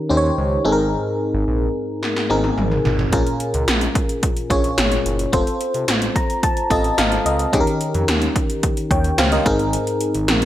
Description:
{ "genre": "1980s-style pop", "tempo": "109 BPM", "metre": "4/4", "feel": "straight", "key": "Bb minor", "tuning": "A4 = 440 Hz", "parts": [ { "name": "FM electric piano", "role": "accompaniment", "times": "0.0-10.4 s", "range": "Ab2 to Bb5", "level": "-19 LUFS", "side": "left 1 dB", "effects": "chorus" }, { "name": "smooth synth bass", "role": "bass", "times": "0.1-10.4 s", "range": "F1 to F2", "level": "-23 LUFS", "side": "equal", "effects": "none" }, { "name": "80s electronic pad drums", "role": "drums", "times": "2.0-10.4 s", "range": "hi-hat, kick drum, snare drum, toms", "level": "-20 LUFS", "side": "equal", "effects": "gated reverb on snare and toms, overdrive, gated reverb" } ], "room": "moderate lush hall reverb, RT60 1.7 s, digital ambience", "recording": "none", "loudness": "-17 LUFS", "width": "side -13 dB against mid", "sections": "0.0-10.4 A section", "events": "drum fill 2.0-3.1; FM electric piano fill 5.9-7.5", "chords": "0.0 Eb7; 0.7 Abadd9; 3.1 Bbm7; 5.3 F; 7.5 Eb7; 9.5 Abadd9", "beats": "0.38 | 0.93 1.48 2.03 2.58 | 3.13 3.68 4.23 4.78 | 5.33 5.88 6.43 6.98 | 7.53 8.08 8.63 9.18 | 9.73 10.29" }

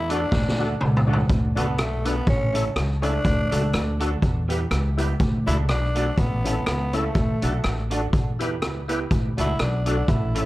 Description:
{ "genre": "ska", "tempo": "123 BPM", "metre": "4/4", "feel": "swing 56% on 8ths", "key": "D major", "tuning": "A4 = 440 Hz", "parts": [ { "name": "growling tenor saxophone", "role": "melody", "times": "0.0-10.5 s", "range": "A3 to E4", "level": "-28 LUFS", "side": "left 1 dB", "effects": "none" }, { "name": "upright bass", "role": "bass", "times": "0.0-10.5 s", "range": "A1 to E2", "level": "-25 LUFS", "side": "equal", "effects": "none" }, { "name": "electric guitar through a small old amp", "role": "accompaniment", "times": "0.1-10.5 s", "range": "G3 to B4", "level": "-31 LUFS", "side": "right 4 dB", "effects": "lush chorus, analog delay" }, { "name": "overdriven tonewheel organ", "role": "stabs", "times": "0.1-10.5 s", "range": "C#4 to B4", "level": "-32 LUFS", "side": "left 4 dB", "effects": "chorus vibrato, slow rotary speaker" }, { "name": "street-band drum kit", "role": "drums", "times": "0.1-10.5 s", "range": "hi-hat, kick drum, rim click, snare drum, toms", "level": "-24 LUFS", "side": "equal", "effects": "none" } ], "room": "light reverb, small room ambience", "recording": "none", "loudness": "-20 LUFS", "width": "side -17 dB against mid", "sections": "0.0-1.3 A section; 1.3-10.5 A section", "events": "drum fill 0.3-1.3", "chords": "0.0 D; 2.3 A; 3.2 D; 4.2 Em; 5.2 D; 6.2 A; 7.2 D; 8.1 Em; 9.1 D", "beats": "0.32 0.81 | 1.29 1.78 2.27 2.76 | 3.25 3.74 4.22 4.71 | 5.20 5.69 6.18 6.67 | 7.16 7.64 8.13 8.62 | 9.11 9.60 10.09" }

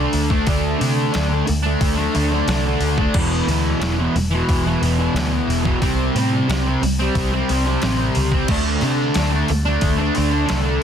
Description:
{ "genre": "rock, shoegaze and dream pop", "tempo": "90 BPM", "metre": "4/4", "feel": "straight", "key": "unclear", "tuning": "A4 = 439 Hz", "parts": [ { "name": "fuzz guitar", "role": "riff", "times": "0.0-10.8 s", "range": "E2 to D4", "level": "-19 LUFS", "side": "equal", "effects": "distortion, analog chorus" }, { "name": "vintage muted picked electric bass", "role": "bass", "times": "0.0-10.8 s", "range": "E1 to C3", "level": "-21 LUFS", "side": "equal", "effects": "none" }, { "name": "detuned 8-bit digital drum machine", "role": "drums", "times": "0.1-10.7 s", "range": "crash cymbal, hi-hat, kick drum, snare drum", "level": "-24 LUFS", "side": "equal", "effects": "overdrive" } ], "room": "little or no reverb", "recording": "dense, heavily limited modern master", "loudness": "-16 LUFS", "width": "side -8 dB against mid", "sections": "0.0-10.8 A section", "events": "none", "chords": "0.0 D5; 3.1 E5; 5.8 C5; 8.5 D5", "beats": "| 0.47 1.13 1.80 2.47 | 3.14 3.81 4.48 5.15 | 5.82 6.48 7.15 7.82 | 8.49 9.16 9.83 10.50" }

